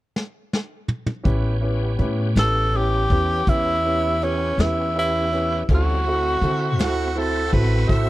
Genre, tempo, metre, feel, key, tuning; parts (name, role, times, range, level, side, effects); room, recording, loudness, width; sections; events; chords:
slow blues; 54 BPM (dotted quarters); 12/8; straight; A mixolydian; A4 = 440 Hz
vintage brush drum kit; drums; 0.2-8.1 s; hi-hat, kick drum, snare drum, toms; -22 LUFS; equal
warm grand piano; accompaniment; 1.2-8.1 s; C4 to B4; -27 LUFS; right 1 dB
bright tonewheel organ; sustained chords; 1.2-8.1 s; G3 to F5; -31 LUFS; left 2 dB; slow rotary speaker, chorus vibrato
upright bass; bass; 1.3-8.1 s; A1 to D3; -22 LUFS; equal
bright tenor saxophone; melody; 2.4-7.1 s; C#4 to A4; -22 LUFS; right 1 dB; slapback echo
clear harmonica; second line; 6.8-8.1 s; F#4 to E5; -26 LUFS; right 4 dB
small room ambience; dry, close 1970s-style studio recording; -19 LUFS; side -16 dB against mid
0.0-1.2 A section; 1.2-8.1 B section
drum fill 0.1-1.2
0.0 N.C.; 1.2 A7; 5.7 D7